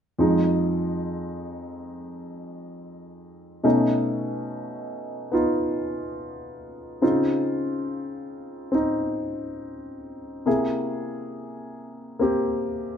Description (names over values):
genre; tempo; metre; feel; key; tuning
solo jazz; 70 BPM; 4/4; swing 66% on 8ths, rubato; F minor; A4 = 441 Hz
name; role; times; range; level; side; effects
clear grand piano; solo; 0.2-13.0 s; F2 to Ab4; -24 LUFS; equal; none
room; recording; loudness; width
wet studio reverb, RT60 0.7 s; rough home demo mix; -23 LUFS; side -8 dB against mid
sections
0.2-13.0 A section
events
none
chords
0.2 Fm7; 3.6 B9; 7.0 Dbmaj9; 10.5 C7b13